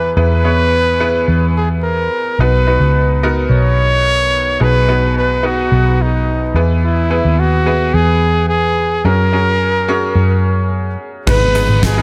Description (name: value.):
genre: piano-driven pop.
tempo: 108 BPM.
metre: 4/4.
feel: straight.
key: B major.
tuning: A4 = 444 Hz.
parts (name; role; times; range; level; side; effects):
clear trumpet; melody; 0.0-12.0 s; D#4 to C#5; -18 LUFS; equal; digital delay.
bright upright piano; accompaniment; 0.0-12.0 s; G#2 to A#5; -22 LUFS; equal; none.
vintage muted picked electric bass; bass; 0.0-12.0 s; G#1 to F#2; -17 LUFS; equal; none.
warm studio string section; sustained chords; 11.3-12.0 s; G#3 to D#4; -31 LUFS; equal; none.
huge arena drum kit; drums; 11.3-12.0 s; crash cymbal, handclaps, hi-hat, kick drum, snare drum; -18 LUFS; equal; none.
room: light reverb.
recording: none.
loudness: -14 LUFS.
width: mono.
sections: 0.0-11.3 A section.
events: none.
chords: 0.0 E; 2.4 B; 6.6 E; 9.1 F#add9; 11.3 G#m.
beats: | 0.17 0.72 1.28 1.84 | 2.39 2.95 3.50 4.06 | 4.61 5.17 5.72 6.28 | 6.84 7.39 7.95 8.50 | 9.06 9.61 10.17 10.73 | 11.28 11.84.